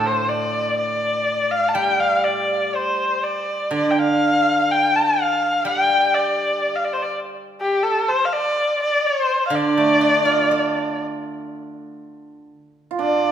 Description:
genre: chinese traditional, Chinese chamber ensemble.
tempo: 62 BPM.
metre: 2/4.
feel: rubato.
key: D yu mode.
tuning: A4 = 444 Hz.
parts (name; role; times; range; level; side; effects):
dark erhu; melody; 0.0-13.3 s; G4 to A5; -18 LUFS; left 1 dB; none.
steel-string zither; accompaniment; 0.0-12.5 s; A2 to A4; -24 LUFS; right 3 dB; none.
hammered dulcimer; second line; 12.9-13.3 s; D4 to F4; -19 LUFS; right 4 dB; none.
room: wet recital hall reverb, RT60 1.8 s.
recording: recorded in a church or concert hall.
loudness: -17 LUFS.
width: side -9 dB against mid.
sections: 0.0-11.5 A section; 11.5-13.3 B section.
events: none.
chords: none.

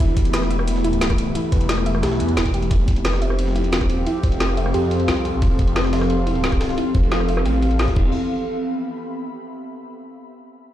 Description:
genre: dark technical drum and bass.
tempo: 177 BPM.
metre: 4/4.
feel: straight.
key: E phrygian.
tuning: A4 = 440 Hz.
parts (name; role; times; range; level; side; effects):
sweeping resonant pad; sustained chords; 0.0-8.1 s; E3 to G4; -27 LUFS; left 1 dB; chorus, sidechain pumping.
soft round pluck; arpeggios; 0.0-8.1 s; E4 to E5; -29 LUFS; right 3 dB; chorus, sidechain pumping, digital delay.
phased detuned saw bass; bass; 0.0-8.1 s; E1 to F2; -22 LUFS; equal; phaser, overdrive.
breakbeat sampler-style drum kit; drums; 0.0-8.0 s; ride cymbal, snare drum; -35 LUFS; equal; high-pass filter on snare, high-pass filter on cymbals.
drum and bass drum kit; drums; 0.0-8.0 s; crash cymbal, hi-hat, rim click, snare drum; -26 LUFS; left 1 dB; low-pass filter on snare, low-pass filter on hats, low-pass filter on cymbals, low-pass filter on room.
electronic kick drum; drums; 0.0-8.0 s; none; -19 LUFS; equal; none.
ethereal airy pad; texture; 0.0-9.4 s; B3 to C6; -26 LUFS; equal; ensemble chorus, built-in reverb, sidechain pumping.
room: light reverb, digital ambience.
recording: played on a big sound system in a bare room, stone room reverb.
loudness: -17 LUFS.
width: side -12 dB against mid.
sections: 0.0-8.1 A section; 8.1-9.5 B section.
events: filter sweep on synth pluck 0.0-8.1.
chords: 0.0 Em; 2.7 F; 8.0 Em.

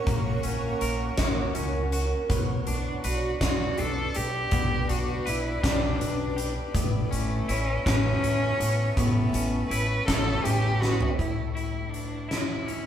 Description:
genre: post-rock.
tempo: 54 BPM (dotted quarters).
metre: 6/8.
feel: straight.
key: unclear.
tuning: A4 = 439 Hz.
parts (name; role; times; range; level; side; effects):
rich cello; melody; 0.0-12.9 s; A3 to B4; -31 LUFS; equal; tape echo.
granular cloud pad; sustained chords; 0.0-11.2 s; A#4 to D6; -36 LUFS; equal; built-in reverb.
twangy electric guitar; arpeggios; 0.0-12.9 s; A2 to B4; -35 LUFS; left 2 dB; spring reverb.
vibraphone with medium mallets; arpeggios; 0.0-12.9 s; A4 to D5; -38 LUFS; right 2 dB; none.
upright bass; bass; 0.1-12.9 s; A1 to C#2; -29 LUFS; equal; none.
huge arena drum kit; drums; 0.1-12.8 s; hi-hat, kick drum, snare drum, toms; -29 LUFS; left 1 dB; none.
room: moderate stone room reverb, RT60 1.3 s.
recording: band playing live in one room.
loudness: -24 LUFS.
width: side -9 dB against mid.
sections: 0.0-11.2 A section; 11.2-12.9 B section.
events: drum fill 10.8-11.2.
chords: 0.0 F#/A#; 2.3 G/B; 6.7 Aadd9.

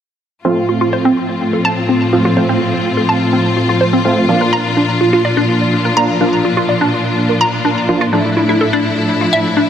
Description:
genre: house.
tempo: 125 BPM.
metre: 4/4.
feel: straight.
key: unclear.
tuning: A4 = 440 Hz.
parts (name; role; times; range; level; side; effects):
clear symphonic string section; sustained chords; 0.4-9.7 s; A2 to F4; -17 LUFS; left 2 dB; none.
glassy wavetable pluck; arpeggios; 0.4-9.6 s; C4 to Bb5; -16 LUFS; equal; chorus, phaser, tape echo.
supersaw stab; stabs; 0.4-9.7 s; F3 to F4; -16 LUFS; right 1 dB; low-pass filter, tape echo.
room: moderate lush hall reverb, RT60 2.7 s.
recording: none.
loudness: -12 LUFS.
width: side -9 dB against mid.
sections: 0.4-9.7 A section.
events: none.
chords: 0.4 F; 4.3 Bb; 8.1 Dmadd9.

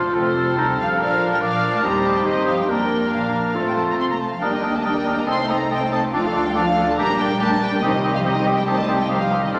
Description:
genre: quick classical-period movement for symphony orchestra.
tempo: 141 BPM.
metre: 4/4.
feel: straight.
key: unclear.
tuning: A4 = 440 Hz.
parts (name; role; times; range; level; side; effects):
warm studio violin section; melody; 0.0-9.6 s; A4 to C6; -28 LUFS; equal; none.
hollow concert flute; second line; 0.0-9.6 s; Bb5 to F6; -31 LUFS; equal; none.
warm clarinet; second line; 0.0-9.6 s; C4 to G4; -27 LUFS; equal; none.
warm oboe; second line; 0.0-9.6 s; G4 to D5; -29 LUFS; equal; none.
warm studio violin section; second line; 0.0-9.6 s; Eb4 to F5; -30 LUFS; equal; none.
dark studio viola section; accompaniment; 0.0-9.6 s; Eb3 to F4; -28 LUFS; equal; none.
dark studio cello section; bass; 0.0-9.6 s; A2 to C4; -31 LUFS; equal; none.
dark studio double bass section; bass; 0.0-9.6 s; Bb1 to Bb2; -36 LUFS; equal; none.
mellow French horn section; sustained chords; 0.1-9.6 s; F3 to Eb4; -29 LUFS; equal; none.
room: wet scoring stage reverb, RT60 1.6 s.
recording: none.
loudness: -20 LUFS.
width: mono.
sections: 0.0-9.6 A section.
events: none.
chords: 0.0 F; 1.0 Bb; 1.8 Cm/Eb; 2.7 Bb/F; 3.6 F; 4.4 Ebmaj7; 5.3 Adim/C; 6.1 Dm; 7.0 Gm/Bb; 7.8 Cm.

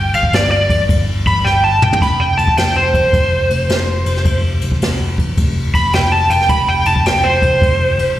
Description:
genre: blues rock power trio and southern rock.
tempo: 107 BPM.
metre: 4/4.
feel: swing 65% on 8ths.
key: unclear.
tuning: A4 = 440 Hz.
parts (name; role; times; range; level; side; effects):
overdriven slide guitar; melody; 0.0-8.2 s; C5 to B5; -14 LUFS; equal; slapback echo, analog delay.
hollow-body short-scale picked electric bass; bass; 0.0-8.2 s; F1 to G1; -18 LUFS; equal; none.
jazz brush drum kit; drums; 0.1-8.1 s; crash cymbal, kick drum, ride cymbal, snare drum, toms; -18 LUFS; equal; none.
room: light reverb, small room ambience.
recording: live gig heard through the venue's PA, recital hall reverb.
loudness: -12 LUFS.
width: side -13 dB against mid.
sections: 0.0-8.2 A section.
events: electric slide guitar solo 0.0-8.2; drum fill 1.5-2.0.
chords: 0.0 G5; 2.0 F5.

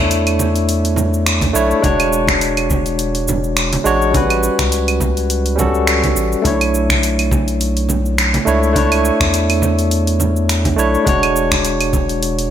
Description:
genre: sunset chillout.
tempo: 104 BPM.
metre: 4/4.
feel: swing 55% on 16ths.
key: B minor.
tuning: A4 = 440 Hz.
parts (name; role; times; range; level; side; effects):
barky tine electric piano; accompaniment; 0.0-12.5 s; G3 to C#5; -16 LUFS; equal; auto-pan, ping-pong delay.
round analog bass; bass; 0.0-12.5 s; E1 to E2; -19 LUFS; equal; none.
deep house drum kit; drums; 0.1-12.5 s; cabasa, claves, finger snaps, hi-hat; -20 LUFS; equal; studio ambience, gated reverb.
congas; percussion; 0.4-12.1 s; none; -24 LUFS; right 2 dB; none.
electronic kick drum; drums; 1.4-12.1 s; none; -21 LUFS; equal; overdrive, studio ambience.
room: light reverb.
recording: bright 1980s-style digital production.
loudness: -13 LUFS.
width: side -10 dB against mid.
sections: 0.0-12.5 A section.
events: none.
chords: 0.0 Bm11 (rootless); 1.8 E13; 4.1 A13; 6.5 Bm11; 11.1 E13.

